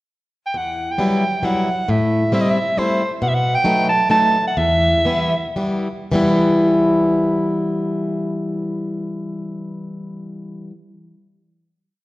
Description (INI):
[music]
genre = musette waltz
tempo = 107-137 BPM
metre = 3/4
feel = swing 55% on 8ths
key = E harmonic minor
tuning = A4 = 440 Hz
[part]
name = warm soprano saxophone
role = melody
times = 0.5-5.6 s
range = C5 to A5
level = -18 LUFS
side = right 1 dB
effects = none
[part]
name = picked plugged-in swing-style acoustic guitar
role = accompaniment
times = 0.5-10.7 s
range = E2 to E4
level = -18 LUFS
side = left 1 dB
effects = none
[sound]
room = wet recital hall reverb, RT60 1.5 s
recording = worn, warbling old tape, cassette tape, warbly pitch drift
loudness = -16 LUFS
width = side -18 dB against mid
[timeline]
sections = 0.0-0.5 pickup bar; 0.5-6.1 A section; 6.1-9.5 final chord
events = slowing down 3.2-6.1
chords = 0.0 N.C.; 0.5 Emadd9; 1.9 Am7; 3.2 B7; 4.6 Em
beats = 0.08 | 0.53 0.99 1.44 | 1.89 2.34 2.78 | 3.22 3.66 4.11 | 4.58 5.06 5.58 | 6.13 6.69 7.24 | 7.79 8.34 8.89